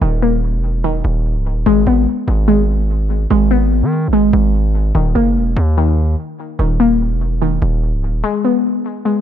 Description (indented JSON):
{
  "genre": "hip hop, trap",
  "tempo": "146 BPM",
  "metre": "4/4",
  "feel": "half-time",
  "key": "unclear",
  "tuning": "A4 = 441 Hz",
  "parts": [
    { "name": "warbly dusty pluck", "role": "arpeggios", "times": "0.0-9.2 s", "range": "Eb3 to Cb4", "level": "-16 LUFS", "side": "left 2 dB", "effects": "chorus, phaser, low-pass filter, ping-pong delay" },
    { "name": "distorted 808-style bass", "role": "bass", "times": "0.0-8.2 s", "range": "Db1 to Eb3", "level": "-15 LUFS", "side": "equal", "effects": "distortion" }
  ],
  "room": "little or no reverb",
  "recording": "dark, warm production, nothing above 10.6 kHz",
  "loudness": "-13 LUFS",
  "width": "side -10 dB against mid",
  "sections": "0.0-8.2 A section",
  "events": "none",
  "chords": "0.0 Eb5; 1.7 Abm; 4.9 Eb5; 8.2 Abm"
}